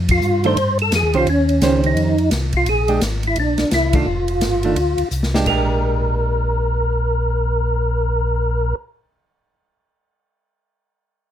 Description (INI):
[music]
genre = soul jazz organ trio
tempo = 172 BPM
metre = 4/4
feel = swing 62% on 8ths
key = Bb mixolydian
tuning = A4 = 443 Hz
[part]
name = mellow tonewheel organ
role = bass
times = 0.0-8.7 s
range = F1 to G2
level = -20 LUFS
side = left 1 dB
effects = slow rotary speaker
[part]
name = percussive tonewheel organ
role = melody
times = 0.1-8.8 s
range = Db4 to C5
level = -19 LUFS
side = equal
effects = slow rotary speaker, overdrive, chorus vibrato
[part]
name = swinging big-band drum kit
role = drums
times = 0.1-5.6 s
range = crash cymbal, hi-hat, kick drum, ride cymbal, snare drum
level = -24 LUFS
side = equal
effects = none
[part]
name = hollow-body jazz guitar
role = accompaniment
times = 0.4-8.8 s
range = Eb3 to C5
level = -21 LUFS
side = right 5 dB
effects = none
[sound]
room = little or no reverb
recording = close, detailed microphones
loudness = -16 LUFS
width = side -10 dB against mid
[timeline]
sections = 0.0-5.5 A section; 5.5-8.3 B section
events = band accent 0.0, 3.9; drum fill 5.1-5.5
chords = 0.0 F7sus2; 1.3 Eb13; 2.7 Bb9; 4.1 Fsus2; 5.5 Bb6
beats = 0.22 0.57 0.92 | 1.27 1.62 1.97 2.32 | 2.67 3.02 3.37 3.72 | 4.07 4.42 4.77 5.12 | 5.47 5.82 6.16 6.51 | 6.86 7.21 7.56 7.91